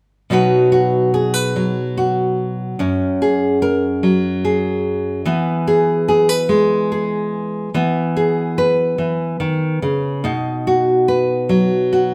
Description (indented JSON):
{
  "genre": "folk, solo fingerstyle acoustic guitar",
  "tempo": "48 BPM (dotted quarters)",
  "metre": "6/8",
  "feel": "straight",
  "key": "B major",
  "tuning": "A4 = 443 Hz",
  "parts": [
    { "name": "nylon-string guitar", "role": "solo", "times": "0.3-12.1 s", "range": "F#2 to B4", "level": "-17 LUFS", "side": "equal", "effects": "none" }
  ],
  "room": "wet stone room reverb, RT60 1.1 s",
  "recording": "band playing live in one room",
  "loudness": "-17 LUFS",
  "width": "mono",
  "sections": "0.3-12.1 A section",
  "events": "none",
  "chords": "0.3 B; 2.8 F#add9; 5.3 E; 10.2 B"
}